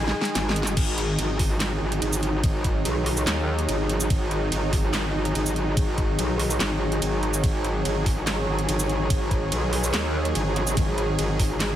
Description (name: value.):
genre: heavy wobble dubstep.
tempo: 144 BPM.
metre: 4/4.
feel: half-time.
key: unclear.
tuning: A4 = 436 Hz.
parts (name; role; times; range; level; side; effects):
supersaw pad; sustained chords; 0.0-11.8 s; D#3 to G#4; -30 LUFS; equal; sidechain pumping.
metallic wobble bass; bass; 0.0-11.8 s; G#1 to D#2; -26 LUFS; equal; distortion, chorus, overdrive.
warbly tape-like pad; texture; 0.0-11.8 s; D#4 to G#5; -30 LUFS; equal; chorus, built-in reverb, sidechain pumping.
dubstep drum kit; drums; 0.1-11.7 s; crash cymbal, handclaps, hi-hat, ride cymbal, shaker, snare drum; -29 LUFS; right 1 dB; none.
electronic kick drum; drums; 0.8-11.5 s; none; -24 LUFS; equal; none.
zap; sound effects; 10.6-10.7 s; none; -34 LUFS; equal; none.
room: light reverb.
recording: none.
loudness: -22 LUFS.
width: side -11 dB against mid.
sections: 0.0-11.8 A section.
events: drum fill 0.0-0.8.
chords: 0.0 G#5.